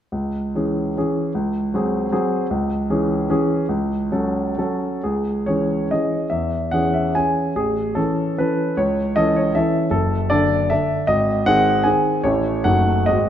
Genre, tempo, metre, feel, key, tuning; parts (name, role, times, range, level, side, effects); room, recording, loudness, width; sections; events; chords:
classical, romantic triple-time dance for piano with dotted rhythms; 120-166 BPM; 3/4; rubato; C# minor; A4 = 441 Hz
warm grand piano; solo; 0.1-13.3 s; F#1 to G#5; -18 LUFS; equal
moderate scoring stage reverb, RT60 1.7 s; -18 LUFS; side -10 dB against mid
0.1-5.0 A section; 5.0-13.3 B section
0.1 C#m; 1.3 G#7/C#; 2.5 C#m; 3.7 F#m/C#; 5.0 C#m; 6.3 C#m/E; 7.5 A; 8.8 A/C#; 9.9 D/F#; 11.1 G#; 12.2 A; 12.6 D#dim/F#